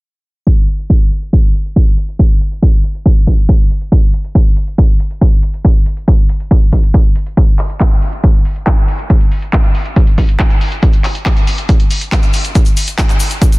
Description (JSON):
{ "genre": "trance", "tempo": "139 BPM", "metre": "4/4", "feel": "straight", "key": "none", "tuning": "none", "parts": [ { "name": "electronic kick drum", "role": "drums", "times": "0.5-13.5 s", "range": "none", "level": "-10 LUFS", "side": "equal", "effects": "none" }, { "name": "techno drum kit", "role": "drums", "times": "0.5-13.6 s", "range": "handclaps, hi-hat", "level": "-20 LUFS", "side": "equal", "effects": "sidechain pumping on hats" }, { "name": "egg shaker", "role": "percussion", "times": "7.4-13.6 s", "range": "none", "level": "-28 LUFS", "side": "left 5 dB", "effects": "none" } ], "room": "little or no reverb", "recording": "dense, heavily limited modern master, low-pass filter", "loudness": "-10 LUFS", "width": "side -23 dB against mid", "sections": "0.5-13.6 A section", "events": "filter sweep 0.5-13.6", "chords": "none" }